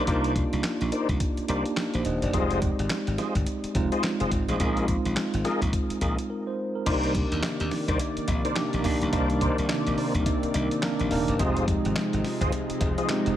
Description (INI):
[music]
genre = R&B, new jack swing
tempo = 106 BPM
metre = 4/4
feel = swing 60% on 16ths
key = C minor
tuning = A4 = 438 Hz
[part]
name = mellow tine electric piano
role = accompaniment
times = 0.0-13.4 s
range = G3 to Eb5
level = -28 LUFS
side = right 2 dB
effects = medium stereo tremolo
[part]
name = tonewheel organ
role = stabs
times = 0.0-13.1 s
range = Eb4 to Eb5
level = -32 LUFS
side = left 2 dB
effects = chorus vibrato, slow rotary speaker, digital delay
[part]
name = glassy slap bass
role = bass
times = 0.0-13.4 s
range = Eb1 to Eb2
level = -29 LUFS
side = equal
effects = none
[part]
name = dusty soul sampler-style drum kit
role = drums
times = 0.1-13.4 s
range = crash cymbal, handclaps, hi-hat, kick drum, snare drum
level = -29 LUFS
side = equal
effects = none
[part]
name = lush unison pad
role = sustained chords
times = 6.9-13.4 s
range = C3 to D5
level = -30 LUFS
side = equal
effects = chorus
[part]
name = cowbell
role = percussion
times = 6.9-13.2 s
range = none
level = -41 LUFS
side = left 4 dB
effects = none
[sound]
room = digital ambience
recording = none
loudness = -24 LUFS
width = side -12 dB against mid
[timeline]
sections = 0.0-6.9 A section; 6.9-13.4 B section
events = break 6.3-6.9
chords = 0.0 Cm9; 2.3 Fm7; 4.6 Bb7sus4; 6.9 Cm9; 11.4 Fm7